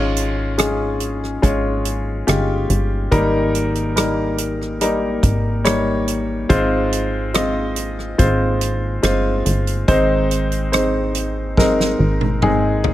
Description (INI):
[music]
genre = pop ballad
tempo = 71 BPM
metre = 4/4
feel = straight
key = Ab major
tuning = A4 = 440 Hz
[part]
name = warm grand piano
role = accompaniment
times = 0.0-12.9 s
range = Ab2 to Eb5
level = -19 LUFS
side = left 1 dB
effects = none
[part]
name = plucky analog bass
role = bass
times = 0.0-12.9 s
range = G1 to Ab1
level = -22 LUFS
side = equal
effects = none
[part]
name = natural country drum kit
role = drums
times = 0.2-12.9 s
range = hi-hat, kick drum, rim click, snare drum, toms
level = -21 LUFS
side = right 1 dB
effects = none
[sound]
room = light reverb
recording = none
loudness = -16 LUFS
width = side -14 dB against mid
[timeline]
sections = 0.0-12.9 A section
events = drum fill 11.6-12.9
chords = 0.0 Db/Ab; 3.1 Eb/Ab; 6.5 Fm/Ab; 9.9 Ab